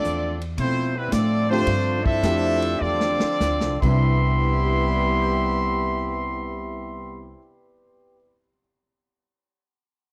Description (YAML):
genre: jazz, big band swing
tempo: 96-113 BPM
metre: 4/4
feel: swing 69% on 8ths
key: C major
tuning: A4 = 440 Hz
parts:
  - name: clear trumpet section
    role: melody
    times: 0.0-7.3 s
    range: G3 to C6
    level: -27 LUFS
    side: equal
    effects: none
  - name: clear trombone section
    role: second line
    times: 0.0-7.3 s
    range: C3 to E4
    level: -30 LUFS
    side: equal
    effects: none
  - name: upright bass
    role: bass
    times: 0.0-7.3 s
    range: C2 to B2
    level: -27 LUFS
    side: equal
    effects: none
  - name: swinging big-band drum kit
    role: drums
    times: 0.0-3.9 s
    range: crash cymbal, hi-hat, kick drum, ride cymbal, snare drum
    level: -29 LUFS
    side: equal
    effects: none
  - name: warm grand piano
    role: accompaniment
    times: 1.5-8.7 s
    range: C3 to G6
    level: -32 LUFS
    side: equal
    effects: none
room: small room ambience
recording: dry, close 1970s-style studio recording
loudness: -22 LUFS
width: mono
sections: 0.0-4.0 A section; 4.0-9.0 B section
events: slowing down 0.0-4.0; drum fill 2.8-4.0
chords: 0.0 Dm9; 1.7 G9sus4; 3.7 Cmaj7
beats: 0.06 0.59 1.13 | 1.68 2.24 2.82 3.41 | 4.02 4.64 5.26 5.88 | 6.51 7.13 7.75 8.37